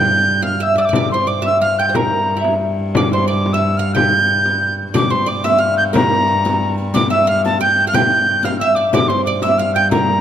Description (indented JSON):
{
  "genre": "medieval dance",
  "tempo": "180 BPM",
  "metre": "3/4",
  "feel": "straight",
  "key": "G dorian",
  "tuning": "A4 = 440 Hz",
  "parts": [
    { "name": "mellow alto recorder", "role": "melody", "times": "0.0-10.2 s", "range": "A5 to G6", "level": "-17 LUFS", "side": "equal", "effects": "none" },
    { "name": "oud", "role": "second line", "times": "0.0-10.2 s", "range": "E4 to G5", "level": "-19 LUFS", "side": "right 2 dB", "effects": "none" },
    { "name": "warm viola da gamba", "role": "drone", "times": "0.0-10.2 s", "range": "G2", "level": "-22 LUFS", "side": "equal", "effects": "none" },
    { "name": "frame drum", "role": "percussion", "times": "0.4-10.1 s", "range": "none", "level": "-21 LUFS", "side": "left 3 dB", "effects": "none" },
    { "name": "riq", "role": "percussion", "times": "4.9-10.1 s", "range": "none", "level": "-25 LUFS", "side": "left 4 dB", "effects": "none" }
  ],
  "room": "moderate concert hall reverb, RT60 2.0 s",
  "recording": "close, detailed microphones, lossy compression artefacts",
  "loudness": "-13 LUFS",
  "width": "side -9 dB against mid",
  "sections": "0.0-5.0 A section; 5.0-10.2 A section",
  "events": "none",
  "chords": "none"
}